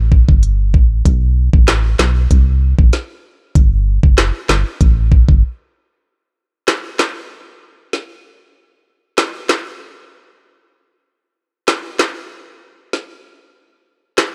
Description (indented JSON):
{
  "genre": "dancehall",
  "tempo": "96 BPM",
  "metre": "4/4",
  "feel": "straight",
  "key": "unclear",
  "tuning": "A4 = 440 Hz",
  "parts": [
    { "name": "solid FM bass", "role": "bass", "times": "0.0-5.4 s", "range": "F#1 to C2", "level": "-16 LUFS", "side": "equal", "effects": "none" },
    { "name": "island pop drum kit", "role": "drums", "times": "0.1-14.3 s", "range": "handclaps, hi-hat, kick drum, rim click, snare drum", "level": "-15 LUFS", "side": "equal", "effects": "vintage 12-bit sampler grit" }
  ],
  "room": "little or no reverb",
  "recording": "none",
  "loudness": "-14 LUFS",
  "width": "mono",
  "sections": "0.0-6.1 A section; 6.1-14.3 B section",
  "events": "break 5.4-6.1",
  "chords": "none"
}